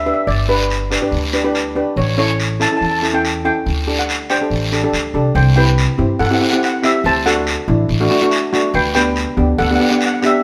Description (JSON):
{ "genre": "calypso", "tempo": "142 BPM", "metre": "4/4", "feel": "swing 54% on 16ths", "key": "G major", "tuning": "A4 = 440 Hz", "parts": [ { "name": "steel pan", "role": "melody", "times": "0.0-10.4 s", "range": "G4 to A5", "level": "-21 LUFS", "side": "equal", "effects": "none" }, { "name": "upright bass", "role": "bass", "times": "0.0-9.8 s", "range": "G1 to G2", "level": "-21 LUFS", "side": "equal", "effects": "none" }, { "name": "steel pan", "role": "accompaniment", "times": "0.1-10.4 s", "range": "A3 to C5", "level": "-20 LUFS", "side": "equal", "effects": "none" }, { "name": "guiro", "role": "percussion", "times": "0.3-10.3 s", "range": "none", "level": "-25 LUFS", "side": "equal", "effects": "none" } ], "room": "moderate stone room reverb, RT60 1.0 s", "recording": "band playing live in one room", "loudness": "-16 LUFS", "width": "mono", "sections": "0.0-5.4 A section; 5.4-10.4 B section", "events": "none", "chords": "0.0 G; 2.0 A; 3.7 D7sus4; 5.4 C; 7.0 D; 8.7 G/D" }